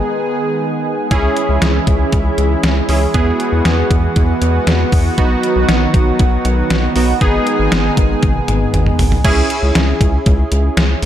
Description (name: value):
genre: synth-pop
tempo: 118 BPM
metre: 4/4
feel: straight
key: unclear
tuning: A4 = 439 Hz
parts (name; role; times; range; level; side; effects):
- warm analog keys; accompaniment; 0.0-11.1 s; B3 to G#4; -19 LUFS; right 2 dB; chorus
- lush unison pad; sustained chords; 0.0-9.2 s; D#3 to G#4; -19 LUFS; equal; chorus
- rubbery square bass; bass; 1.1-11.1 s; G#1 to E2; -16 LUFS; equal; none
- detuned 8-bit digital drum machine; drums; 1.1-11.1 s; crash cymbal, hi-hat, kick drum, snare drum, toms; -16 LUFS; equal; overdrive
room: light reverb, digital ambience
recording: dark, warm production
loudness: -12 LUFS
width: side -11 dB against mid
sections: 0.0-1.1 A section; 1.1-9.2 B section; 9.2-11.1 C section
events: drum fill 8.2-9.2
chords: 0.0 G#m; 1.1 C#m; 3.1 Eadd9; 5.2 B; 7.2 G#m; 9.2 C#m